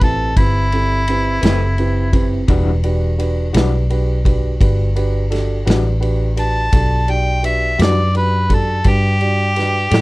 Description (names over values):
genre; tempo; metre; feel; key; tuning
slow blues; 56 BPM (dotted quarters); 12/8; straight; E minor; A4 = 440 Hz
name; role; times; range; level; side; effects
mellow harmonica; melody; 0.0-10.0 s; E4 to A5; -19 LUFS; equal; overdrive
dark grand piano; accompaniment; 0.0-10.0 s; C4 to D5; -23 LUFS; right 3 dB; none
vintage muted fingered electric bass; bass; 0.0-10.0 s; E1 to A2; -17 LUFS; equal; none
vintage drum kit; drums; 0.0-10.0 s; kick drum, ride cymbal, snare drum; -19 LUFS; equal; none
electric guitar through a small old amp; accompaniment; 1.4-10.0 s; E3 to B4; -23 LUFS; left 5 dB; tremolo
room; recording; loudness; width
little or no reverb; none; -14 LUFS; side -21 dB against mid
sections
0.0-10.0 A section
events
harmonica solo 0.0-10.0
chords
0.0 Em9